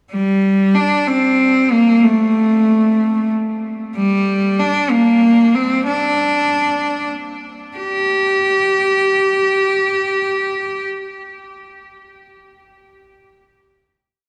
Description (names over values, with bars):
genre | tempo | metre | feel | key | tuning
rock | free time | none | none | G minor | A4 = 439 Hz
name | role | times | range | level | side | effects
bright cello | solo | 0.1-10.9 s | G3 to G4 | -16 LUFS | equal | analog delay
room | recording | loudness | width
moderate huge ambient reverb, RT60 7.1 s | small room reverb | -16 LUFS | mono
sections
0.1-7.8 A section; 7.8-11.6 final note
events
none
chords
none